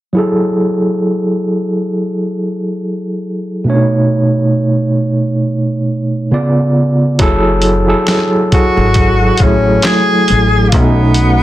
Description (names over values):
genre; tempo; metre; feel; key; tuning
R&B, neo-soul; 68 BPM; 4/4; swing 53% on 16ths; F# dorian; A4 = 439 Hz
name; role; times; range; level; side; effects
overdriven tine electric piano; accompaniment; 0.1-11.4 s; B2 to D5; -12 LUFS; right 1 dB; medium tremolo, plate reverb
upright bass; bass; 7.2-11.4 s; F#1 to B1; -14 LUFS; left 1 dB; none
boom bap sampler-style drum kit; drums; 7.2-11.4 s; handclaps, hi-hat, kick drum, snare drum; -14 LUFS; left 1 dB; none
warm tenor saxophone; melody; 8.5-11.4 s; A#3 to G#4; -14 LUFS; left 1 dB; plate reverb
room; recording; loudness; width
moderate studio reverb, RT60 0.8 s; dense, heavily limited modern master; -11 LUFS; side -14 dB against mid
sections
0.1-7.2 A section; 7.2-11.4 B section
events
none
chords
0.1 F#m9; 3.7 B9; 6.3 C#7b9; 7.2 F#m9; 10.7 B9